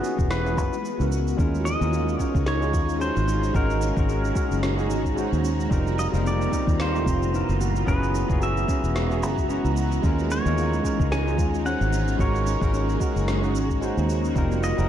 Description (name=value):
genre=sunset chillout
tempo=111 BPM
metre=4/4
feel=swing 56% on 16ths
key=unclear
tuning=A4 = 440 Hz
part: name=pedal steel guitar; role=melody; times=0.0-14.9 s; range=Gb4 to Ab5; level=-31 LUFS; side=equal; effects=vintage 12-bit sampler grit, ping-pong delay
part: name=barky tine electric piano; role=accompaniment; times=0.0-14.9 s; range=G3 to Bb5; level=-29 LUFS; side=equal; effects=auto-pan, digital delay
part: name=shimmering ambient pad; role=sustained chords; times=0.0-14.9 s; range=Bb2 to Gb4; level=-30 LUFS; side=left 1 dB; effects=chorus, built-in reverb, phaser
part: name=electronic shaker and snare drum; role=drums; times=0.0-14.9 s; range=none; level=-36 LUFS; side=right 1 dB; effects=none
part: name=fingered electric bass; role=bass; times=0.2-14.9 s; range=Fb1 to Eb2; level=-25 LUFS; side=equal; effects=none
part: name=electronic kick drum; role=drums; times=0.2-14.5 s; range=none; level=-26 LUFS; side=equal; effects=none
part: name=steel pan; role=arpeggios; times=1.4-14.8 s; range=C4 to Cb5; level=-33 LUFS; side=right 3 dB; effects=digital delay
part: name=wind-like tuned noise texture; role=texture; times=2.8-14.9 s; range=Bb5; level=-38 LUFS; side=right 5 dB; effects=built-in reverb
room=light reverb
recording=dark, warm production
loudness=-21 LUFS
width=side -10 dB against mid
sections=0.0-1.4 A section; 1.4-14.9 B section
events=none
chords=0.0 Gb9sus4; 1.4 Eb9sus4; 3.3 Ab9sus4; 5.7 F9sus4; 7.6 Gb9sus4; 10.0 Eb9sus4; 11.9 Ab9sus4; 14.4 F9sus4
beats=0.31 0.85 | 1.39 1.93 2.47 3.01 | 3.55 4.09 4.63 5.17 | 5.71 6.25 6.79 7.33 | 7.87 8.41 8.96 9.49 | 10.04 10.58 11.12 11.66 | 12.20 12.74 13.28 13.82 | 14.36